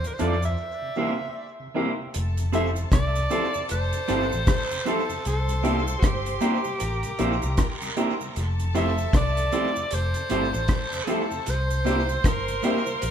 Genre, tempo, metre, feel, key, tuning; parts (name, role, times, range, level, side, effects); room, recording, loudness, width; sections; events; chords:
lovers rock reggae; 77 BPM; 4/4; swing 60% on 16ths; F major; A4 = 439 Hz
edgy alto saxophone; melody; 0.0-13.1 s; Gb4 to E5; -30 LUFS; equal; tape echo
mellow tonewheel organ; accompaniment; 0.0-12.9 s; D2 to E4; -36 LUFS; left 2 dB; chorus vibrato, stopped rotary speaker
warm grand piano; accompaniment; 0.0-12.8 s; C3 to Bb4; -30 LUFS; left 4 dB
deep reggae drum kit; drums; 0.0-13.1 s; hi-hat, kick drum, rim click; -25 LUFS; equal
cabasa and guiro; percussion; 0.0-13.1 s; -40 LUFS; right 4 dB; tape echo
electric guitar at the edge of break-up; stabs; 0.2-12.8 s; Bb3 to D5; -29 LUFS; right 5 dB; spring reverb
vintage muted fingered electric bass; bass; 0.2-13.1 s; F1 to F2; -27 LUFS; equal
warm symphonic violin section; second line; 2.1-13.1 s; A4 to C6; -34 LUFS; equal
moderate large studio reverb, RT60 0.9 s; band playing live in one room; -22 LUFS; side -8 dB against mid
0.0-2.1 A section; 2.1-13.1 B section
break 0.6-2.1
0.0 Dm7; 0.6 C7; 2.1 Fmaj7; 5.2 C7; 8.4 Fmaj7; 11.5 C7